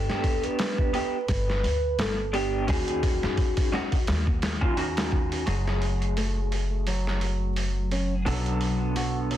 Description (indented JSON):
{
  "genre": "trip hop",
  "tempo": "86 BPM",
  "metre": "4/4",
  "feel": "swing 56% on 16ths",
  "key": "unclear",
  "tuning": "A4 = 440 Hz",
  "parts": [
    { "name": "pure breathy sine lead", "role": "melody", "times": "0.0-4.8 s", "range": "F#4 to B4", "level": "-32 LUFS", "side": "right 1 dB", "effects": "lush chorus, dub echo" },
    { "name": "electric guitar through a small old amp", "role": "accompaniment", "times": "0.0-9.4 s", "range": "A3 to A4", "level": "-31 LUFS", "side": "equal", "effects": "tremolo, tape echo" },
    { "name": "upright bass", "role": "bass", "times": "0.0-9.4 s", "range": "F#1 to F#2", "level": "-28 LUFS", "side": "equal", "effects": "none" },
    { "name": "trip hop sampler-style drum kit", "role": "drums", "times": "0.1-9.4 s", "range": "hi-hat, kick drum, snare drum", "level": "-28 LUFS", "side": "equal", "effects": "high-pass filter on hats, high-pass filter on snare, high-pass filter on kick, high-pass filter on room" },
    { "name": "deep dark ambient pad", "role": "sustained chords", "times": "7.6-9.4 s", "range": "F#3 to F#5", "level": "-35 LUFS", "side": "left 3 dB", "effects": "chorus, built-in reverb" },
    { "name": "nylon-string guitar", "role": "arpeggios", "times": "5.5-9.4 s", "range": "F#3 to F#4", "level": "-33 LUFS", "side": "right 2 dB", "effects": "low-pass filter, tape echo" }
  ],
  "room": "little or no reverb",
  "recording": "dense, heavily limited modern master, vinyl crackle",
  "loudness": "-24 LUFS",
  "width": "side -12 dB against mid",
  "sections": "0.0-5.5 A section; 5.5-9.4 B section",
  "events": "filter sweep on nylon-string guitar 5.5-9.4",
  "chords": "0.0 G; 2.7 D#m7; 5.5 F#madd9; 8.3 Bm7"
}